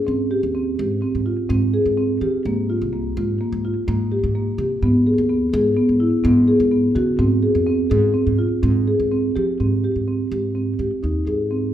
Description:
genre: contemporary instrumental, chamber music in an uneven meter.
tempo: 126 BPM.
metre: 5/4.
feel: straight.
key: Ab major.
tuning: A4 = 440 Hz.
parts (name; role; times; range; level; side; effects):
upright bass; bass; 0.0-11.7 s; C2 to F3; -23 LUFS; equal; none.
marimba with soft mallets; arpeggios; 0.1-11.7 s; Bb3 to Ab4; -18 LUFS; equal; none.
room: wet recital hall reverb, RT60 1.5 s.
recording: minimal, uncompressed stereo recording.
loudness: -17 LUFS.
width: side -11 dB against mid.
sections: 0.0-9.6 A section; 9.6-11.7 B section.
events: none.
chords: 0.1 Fmadd9 (rootless); 2.5 Abmaj13/C; 4.8 Emaj7 (rootless); 7.2 Ab; 9.6 Abmaj7.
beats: | 0.07 0.55 1.03 1.51 1.98 | 2.46 2.93 3.40 3.88 4.35 | 4.82 5.29 5.76 6.24 6.71 | 7.19 7.67 8.14 8.62 9.11 | 9.60 10.08 10.56 11.04 11.51.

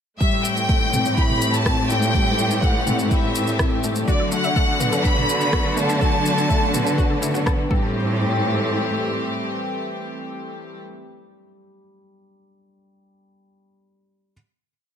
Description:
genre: piano and strings electronica.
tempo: 124 BPM.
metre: 4/4.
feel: straight.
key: A dorian.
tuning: A4 = 439 Hz.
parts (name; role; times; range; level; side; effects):
clear studio violin section; melody; 0.2-7.4 s; D5 to B5; -23 LUFS; left 1 dB; none.
rich studio string section; sustained chords; 0.2-10.8 s; D3 to G4; -27 LUFS; equal; none.
felt-muted upright piano; riff; 0.2-14.3 s; F#3 to E4; -27 LUFS; left 4 dB; digital delay.
warm chamber cello section; bass; 0.2-9.4 s; A2 to D3; -24 LUFS; right 1 dB; sidechain pumping.
deep house drum kit; drums; 0.2-7.6 s; rim click, shaker, toms; -28 LUFS; equal; none.
electronic kick drum; drums; 0.2-7.8 s; none; -21 LUFS; equal; none.
wide unison pluck; arpeggios; 4.1-8.2 s; A3 to A5; -32 LUFS; left 4 dB; cassette tape, sidechain pumping, digital delay.
room: light reverb, small room reverb.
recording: none.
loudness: -18 LUFS.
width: side -8 dB against mid.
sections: 0.2-7.9 drop; 7.9-11.8 final hit.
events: drop 0.2-7.9.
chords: 0.2 Am7; 4.1 D6; 7.7 Am7.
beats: | 0.21 0.69 1.18 1.66 | 2.14 2.63 3.11 3.59 | 4.08 4.56 5.05 5.53 | 6.01 6.50 6.98 7.46 | 7.95 8.43 8.92 9.40 | 9.88 10.37 10.85 11.34.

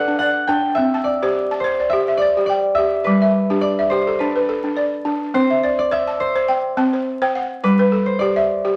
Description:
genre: west african traditional, West African string and xylophone music.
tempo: 105 BPM.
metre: 4/4.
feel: swing 55% on 16ths.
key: C lydian.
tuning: A4 = 440 Hz.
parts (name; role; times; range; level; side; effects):
concert harp; melody; 0.0-8.8 s; B4 to G5; -23 LUFS; equal; none.
balafon; arpeggios; 0.0-8.8 s; G3 to A5; -20 LUFS; equal; none.
room: wet studio reverb, RT60 1.0 s.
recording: vinyl crackle.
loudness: -18 LUFS.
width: mono.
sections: 0.0-5.3 A section; 5.3-8.8 B section.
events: none.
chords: 0.0 G; 0.8 C; 3.1 G; 5.3 C; 7.6 G.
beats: 0.20 | 0.77 1.34 1.92 2.49 | 3.06 3.63 4.20 4.78 | 5.35 5.92 6.50 7.07 | 7.64 8.22.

